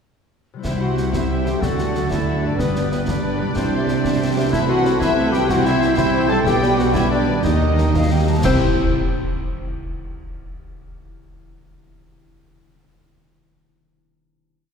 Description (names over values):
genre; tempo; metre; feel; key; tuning
cinematic, heroic adventure film score; 124 BPM (dotted quarters); 12/8; straight; C lydian; A4 = 440 Hz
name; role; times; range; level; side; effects
concert harp; arpeggios; 0.5-10.2 s; G2 to E5; -26 LUFS; left 4 dB; none
dark symphonic violin section; melody; 0.6-8.6 s; B4 to A5; -27 LUFS; left 2 dB; none
silver concert flute; second line; 0.6-8.6 s; D5 to A5; -31 LUFS; left 1 dB; none
warm oboe; second line; 0.6-8.6 s; A4 to E5; -32 LUFS; right 1 dB; none
warm symphonic violin section; second line; 0.6-8.6 s; Bb4 to C6; -30 LUFS; left 4 dB; none
clear symphonic viola section; accompaniment; 0.6-8.6 s; E3 to C5; -28 LUFS; right 1 dB; none
clear French horn section; sustained chords; 0.6-8.6 s; B3 to A4; -25 LUFS; left 1 dB; none
clear symphonic cello section; bass; 0.6-8.6 s; G2 to Eb3; -24 LUFS; right 4 dB; none
rich symphonic double bass section; bass; 0.6-8.6 s; G1 to Eb2; -23 LUFS; right 2 dB; none
concert snare drum, clash cymbals and concert bass drum; drums; 0.6-8.6 s; none; -27 LUFS; equal; none
bright clarinet; second line; 0.7-8.6 s; B3 to C5; -28 LUFS; left 2 dB; none
cymbal swell, clash cymbals and concert bass drum; percussion; 4.5-9.0 s; none; -29 LUFS; equal; none
room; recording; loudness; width
wet concert hall reverb, RT60 2.4 s; heard from further back in the room; -16 LUFS; side -6 dB against mid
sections
0.7-8.4 theme; 8.4-10.4 final chord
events
band accent 8.4-8.8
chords
0.7 C; 1.6 D; 2.6 G; 3.6 C; 4.5 Amadd9/C; 5.5 C; 6.5 G/B; 7.4 Eb; 8.4 C